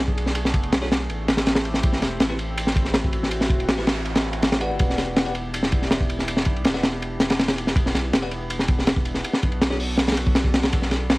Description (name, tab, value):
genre	drum and bass, jungle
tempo	162 BPM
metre	4/4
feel	straight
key	E minor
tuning	A4 = 441 Hz
part	warbly tape-like pad	sustained chords	0.0-11.2 s	A3 to A4	-31 LUFS	equal	chorus, built-in reverb, vintage 12-bit sampler grit, cassette tape
part	saturated sub bass	bass	0.0-11.2 s	E1 to B1	-29 LUFS	equal	tube saturation
part	crunchy breakbeat drum kit	drums	0.1-11.2 s	hi-hat, kick drum, ride cymbal, snare drum	-20 LUFS	equal	cassette tape
part	bell-like tine electric piano	stabs	0.8-9.8 s	C4 to F#5	-32 LUFS	left 1 dB	medium stereo tremolo, vintage 12-bit sampler grit, cassette tape, dub echo
part	noise sweep	sound effects	3.6-4.8 s	none	-35 LUFS	right 3 dB	none
room	light reverb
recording	home recording on cassette, vinyl crackle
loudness	-20 LUFS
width	side -22 dB against mid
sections	0.0-11.2 A section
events	noise sweep 3.6-4.8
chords	0.0 Bm7; 1.1 Am7; 4.8 Em7; 9.2 Bm7